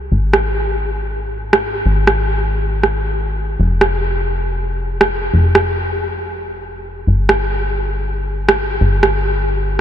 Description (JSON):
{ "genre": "uplifting trance", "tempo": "138 BPM", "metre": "4/4", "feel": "straight", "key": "unclear", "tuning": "A4 = 439 Hz", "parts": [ { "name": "plucky analog bass", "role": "bass", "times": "0.0-9.8 s", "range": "F1 to Ab1", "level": "-18 LUFS", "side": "left 1 dB", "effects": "none" }, { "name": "electronic rim click", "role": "drums", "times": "0.3-9.1 s", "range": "none", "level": "-17 LUFS", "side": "right 1 dB", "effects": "low-pass filter on snare" } ], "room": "moderate huge ambient reverb, RT60 4.7 s", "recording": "dreamy mix soaked in reverb, nothing above 11.0 kHz", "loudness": "-14 LUFS", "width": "side -10 dB against mid", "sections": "0.0-9.8 A section", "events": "none", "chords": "none" }